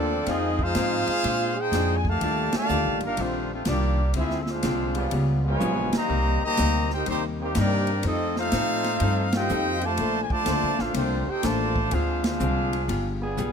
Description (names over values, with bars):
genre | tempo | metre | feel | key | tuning
jazz, big band swing | 124 BPM | 4/4 | swing 67% on 8ths | Bb major | A4 = 439 Hz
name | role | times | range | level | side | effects
warm trumpet section | melody | 0.0-13.2 s | A3 to Bb5 | -27 LUFS | equal | none
warm trombone section | second line | 0.0-13.2 s | Bb2 to Ab4 | -30 LUFS | right 1 dB | none
archtop guitar, miked and amplified | accompaniment | 0.0-13.5 s | Bb2 to C5 | -31 LUFS | left 6 dB | none
bright trombone section | sustained chords | 0.0-13.5 s | Bb2 to A4 | -34 LUFS | equal | none
upright bass | bass | 0.0-13.5 s | G1 to Bb2 | -27 LUFS | right 1 dB | none
swinging big-band drum kit | drums | 0.3-13.5 s | hi-hat, kick drum, ride cymbal, snare drum, toms | -32 LUFS | right 1 dB | none
room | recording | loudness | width
light reverb | close, detailed microphones | -22 LUFS | side -7 dB against mid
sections
0.0-13.5 A section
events
band accent 2.5, 5.9, 9.3, 12.2; drum fill 5.6-6.1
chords
0.3 Fm7; 1.2 Bb7; 2.2 Ebmaj9; 4.2 Dm7b5; 5.1 Db7#11; 6.1 Cm7; 8.0 F7; 10.0 Bbmaj9; 11.9 Dm7b5; 12.9 G7b9